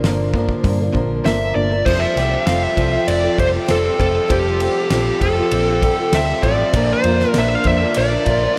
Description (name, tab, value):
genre	folk rock and heartland rock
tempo	98 BPM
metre	4/4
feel	straight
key	unclear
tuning	A4 = 439 Hz
part	picked acoustic archtop guitar	accompaniment	0.0-8.6 s	Bb2 to Bb4	-24 LUFS	equal	none
part	overdriven electric guitar	riff	0.0-8.6 s	Bb2 to G4	-26 LUFS	equal	none
part	hollow-body short-scale picked electric bass	bass	0.0-8.5 s	F1 to G2	-24 LUFS	equal	none
part	damped 70s drum kit	drums	0.0-8.4 s	crash cymbal, hi-hat, kick drum, ride cymbal, snare drum	-25 LUFS	equal	none
part	smooth overdriven lead guitar	melody	1.3-8.6 s	G4 to F5	-21 LUFS	equal	analog delay
room	moderate huge ambient reverb, RT60 4.1 s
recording	dreamy mix soaked in reverb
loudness	-17 LUFS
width	mono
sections	0.0-1.9 A section; 1.9-8.6 B section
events	none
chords	0.0 Bb; 1.9 Fadd9; 6.8 Bb